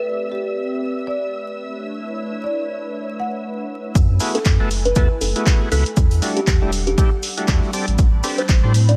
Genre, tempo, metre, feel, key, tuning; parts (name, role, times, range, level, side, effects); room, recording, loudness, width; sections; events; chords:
deep house; 119 BPM; 4/4; swing 58% on 16ths; F# phrygian; A4 = 436 Hz
marimba with medium mallets; melody; 0.0-3.9 s; G4 to F#5; -29 LUFS; equal; dub echo
hollow soft pad; sustained chords; 0.0-9.0 s; G3 to B5; -32 LUFS; equal; ensemble chorus, sidechain pumping
analog string pad; texture; 0.0-4.0 s; E5 to E6; -36 LUFS; equal; ensemble chorus, sidechain pumping
warm sub bass; bass; 4.0-9.0 s; E1 to A2; -20 LUFS; equal; sidechain pumping
electronic kick drum; drums; 4.0-8.6 s; -18 LUFS; equal
oversized low-tuned drum kit; drums; 4.0-8.9 s; hi-hat, shaker, snare drum; -38 LUFS; equal
punchy analog drum machine; drums; 4.0-9.0 s; handclaps, hi-hat; -28 LUFS; equal
overdriven tonewheel organ; stabs; 4.2-8.7 s; G3 to D5; -28 LUFS; equal; chorus vibrato, slow rotary speaker, sidechain pumping
kalimba; melody; 4.3-9.0 s; G4 to D5; -27 LUFS; equal; dub echo
light reverb, studio ambience; vinyl crackle; -20 LUFS; mono
0.0-4.0 A section; 4.0-9.0 B section
filter sweep on analog synth pad 0.0-4.0; drop 4.0-9.0
0.0 Am11; 1.7 Bm11; 4.0 F#m11; 6.0 Em11; 7.7 Am11